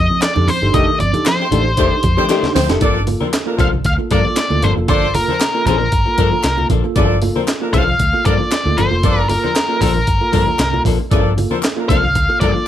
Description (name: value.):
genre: funk.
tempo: 116 BPM.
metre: 4/4.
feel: straight.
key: G minor.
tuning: A4 = 440 Hz.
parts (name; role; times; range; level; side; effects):
octave-fuzz lead guitar; melody; 0.0-12.7 s; Bb4 to F5; -18 LUFS; left 1 dB; distortion.
vintage muted fingered electric bass; bass; 0.0-12.5 s; F1 to G2; -19 LUFS; equal; none.
mellow tine electric piano; stabs; 0.1-12.7 s; G2 to A4; -23 LUFS; right 4 dB; fast stereo tremolo, tape echo.
congas; percussion; 0.1-12.5 s; none; -26 LUFS; right 4 dB; none.
breakbeat sampler-style drum kit; drums; 0.2-12.5 s; handclaps, hi-hat, kick drum, snare drum; -19 LUFS; equal; none.
group handclap; percussion; 0.2-11.8 s; none; -30 LUFS; left 4 dB; none.
archtop guitar, miked and amplified; accompaniment; 0.7-12.6 s; Eb3 to Bb4; -20 LUFS; left 8 dB; none.
warm horn section; second line; 1.4-12.5 s; F3 to D5; -22 LUFS; right 1 dB; none.
room: light reverb.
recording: none.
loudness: -13 LUFS.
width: side -11 dB against mid.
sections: 0.0-2.8 A section; 2.8-12.7 B section.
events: break 0.0-0.7; band accent 0.7-2.8; drum fill 2.3-2.8.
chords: 0.0 F13; 2.8 Gm9.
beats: 0.22 | 0.74 1.26 1.78 2.29 | 2.81 3.33 3.85 4.37 | 4.89 5.41 5.92 6.44 | 6.96 7.48 8.00 8.52 | 9.04 9.55 10.07 10.59 | 11.11 11.63 12.15 12.67.